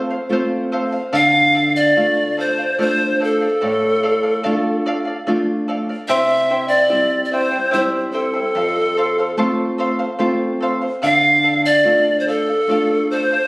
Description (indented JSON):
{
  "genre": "andean folk",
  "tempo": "73 BPM",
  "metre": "3/4",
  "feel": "straight",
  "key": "D minor",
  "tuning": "A4 = 440 Hz",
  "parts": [
    { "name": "charango", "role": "accompaniment", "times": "0.0-13.5 s", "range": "E4 to G5", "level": "-24 LUFS", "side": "equal", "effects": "none" },
    { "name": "nylon-string guitar", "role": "accompaniment", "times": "0.0-13.3 s", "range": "F2 to F4", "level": "-21 LUFS", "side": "equal", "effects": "none" },
    { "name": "breathy bright pan flute", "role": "melody", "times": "1.1-13.5 s", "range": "A4 to F5", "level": "-15 LUFS", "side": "equal", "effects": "none" }
  ],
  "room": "moderate scoring stage reverb, RT60 1.8 s",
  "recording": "recorded on a phone in the room, studio reverb",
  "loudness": "-15 LUFS",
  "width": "side -24 dB against mid",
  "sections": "0.0-13.5 A section",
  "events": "none",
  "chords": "0.0 F; 1.1 Dm; 6.1 C; 8.6 F; 11.0 Dm",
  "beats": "0.32 | 1.15 1.97 2.79 | 3.62 4.44 5.26 | 6.09 6.91 7.74 | 8.56 9.38 10.21 | 11.03 11.86 12.68"
}